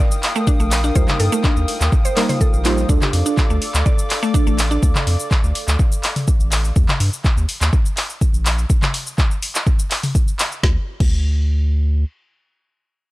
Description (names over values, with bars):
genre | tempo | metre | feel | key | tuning
afro house | 124 BPM | 4/4 | straight | unclear | A4 = 440 Hz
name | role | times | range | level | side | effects
dark analog pad | sustained chords | 0.0-6.7 s | A4 to Eb6 | -27 LUFS | equal | chorus, sidechain pumping
mallet-like synth pluck | arpeggios | 0.0-4.8 s | A3 to D5 | -23 LUFS | equal | chorus, sidechain pumping, analog delay
deep mellow chord stab | stabs | 0.0-4.2 s | G3 to C5 | -24 LUFS | right 2 dB | chorus, vintage 12-bit sampler grit, sidechain pumping, analog delay
afro-pop drum kit | drums | 0.1-11.1 s | crash cymbal, handclaps, hi-hat, shaker, snare drum, toms | -22 LUFS | equal | small room ambience
electronic kick drum | drums | 0.5-11.1 s | none | -16 LUFS | equal | small room ambience
round analog bass | bass | 0.6-12.0 s | A1 to G2 | -18 LUFS | equal | sidechain pumping
room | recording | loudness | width
little or no reverb | dry, gritty hardware recording, cassette tape | -15 LUFS | side -19 dB against mid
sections
0.0-10.6 A section; 10.6-13.1 B section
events
drop 0.0-10.6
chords
0.0 Ebadd9; 2.9 Dm; 6.8 Eb; 10.6 N.C.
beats
0.47 | 0.95 1.44 1.92 2.41 | 2.89 3.38 3.86 4.34 | 4.83 5.31 5.79 6.28 | 6.76 7.25 7.73 8.21 | 8.70 9.18 9.66 10.15 | 10.63 11.12 11.60